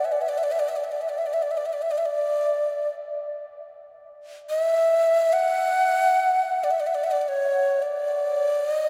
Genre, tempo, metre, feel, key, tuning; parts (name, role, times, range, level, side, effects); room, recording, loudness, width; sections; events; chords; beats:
world meditative; free time; D major; A4 = 440 Hz
breathy mellow Native American-style cedar flute; solo; 0.0-8.9 s; C#5 to F#5; -24 LUFS; equal; tape echo
wet cathedral reverb, RT60 6.4 s; dreamy mix soaked in reverb; -24 LUFS; mono
0.0-8.9 A section
free time